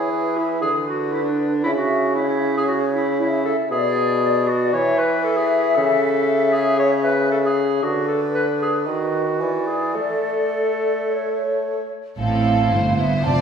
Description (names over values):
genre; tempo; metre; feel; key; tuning
quick classical-period movement for symphony orchestra; 116 BPM; 4/4; rubato; A major; A4 = 440 Hz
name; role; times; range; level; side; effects
mellow hollow flute section; second line; 0.0-13.4 s; B4 to A5; -24 LUFS; left 1 dB; none
warm clarinet; second line; 0.0-11.9 s; D4 to C#5; -22 LUFS; equal; none
warm bassoon; accompaniment; 0.0-11.9 s; B2 to A3; -22 LUFS; equal; none
rich studio violin section; melody; 12.2-13.4 s; A4 to C5; -30 LUFS; left 4 dB; none
rich studio viola section; accompaniment; 12.2-13.4 s; A3 to F4; -24 LUFS; right 1 dB; none
rich studio cello section; bass; 12.2-13.4 s; F2 to A2; -23 LUFS; right 2 dB; none
rich studio double bass section; bass; 12.2-13.4 s; F1 to A1; -22 LUFS; right 3 dB; none
rich studio violin section; second line; 13.2-13.4 s; D5; -26 LUFS; left 5 dB; none
room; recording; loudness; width
wet scoring stage reverb, RT60 1.6 s; heard from further back in the room; -18 LUFS; side -7 dB against mid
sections
0.0-12.2 A section; 12.2-13.4 B section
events
none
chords
0.0 E; 0.6 D6; 1.7 C#madd11; 3.7 Bm; 4.7 N.C.; 5.8 A/C#; 7.8 Bm/D; 8.9 B/D#; 9.4 E7; 10.0 A; 12.2 Am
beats
0.10 0.62 1.14 | 1.66 2.19 2.70 3.20 | 3.71 4.22 4.74 5.25 | 5.77 6.28 6.80 7.32 | 7.83 8.34 8.87 9.41 | 9.96 10.52 11.08 11.63 | 12.18 12.71 13.23